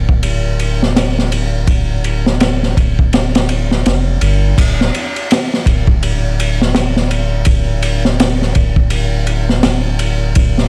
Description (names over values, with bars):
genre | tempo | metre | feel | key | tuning
trip hop | 83 BPM | 4/4 | swing 59% on 16ths | D minor | A4 = 440 Hz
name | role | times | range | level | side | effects
soft dub sub bass | bass | 0.0-10.7 s | D1 to G1 | -18 LUFS | equal | none
crunchy breakbeat drum kit | drums | 0.1-10.7 s | crash cymbal, kick drum, ride cymbal, snare drum | -16 LUFS | equal | none
room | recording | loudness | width
little or no reverb | vinyl crackle | -14 LUFS | mono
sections
0.0-4.6 A section; 4.6-10.7 B section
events
none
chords
none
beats
0.24 0.96 | 1.69 2.41 3.13 3.85 | 4.58 5.30 6.02 6.75 | 7.47 8.19 8.91 9.64 | 10.36